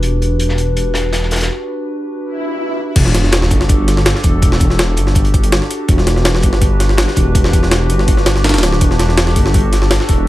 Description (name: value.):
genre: drum and bass, jungle.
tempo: 164 BPM.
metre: 4/4.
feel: straight.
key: E minor.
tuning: A4 = 440 Hz.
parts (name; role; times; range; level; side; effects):
warbly tape-like pad; sustained chords; 0.0-10.3 s; D4 to B4; -20 LUFS; equal; chorus, built-in reverb.
detuned saw bass; bass; 0.0-10.3 s; D1 to G1; -14 LUFS; equal; none.
crunchy breakbeat drum kit; drums; 0.0-10.2 s; hi-hat, snare drum; -25 LUFS; left 1 dB; high-pass filter on hats, studio reverb, high-pass filter on snare, high-pass filter on room.
swell and sub drop; sound effects; 2.3-4.4 s; none; -21 LUFS; equal; none.
jungle sampler-style drum kit; drums; 3.0-10.2 s; crash cymbal, hi-hat, kick drum, snare drum; -14 LUFS; equal; overdrive, studio reverb.
room: digital ambience.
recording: none.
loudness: -11 LUFS.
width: side -16 dB against mid.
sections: 0.0-3.0 A section; 3.0-10.3 B section.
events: filter sweep on ambient pad 0.0-3.0; break 1.5-3.0; swell 2.3-3.0; drop 3.0-10.3; impact 3.0-4.4.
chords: 0.0 Em9; 3.0 Em11.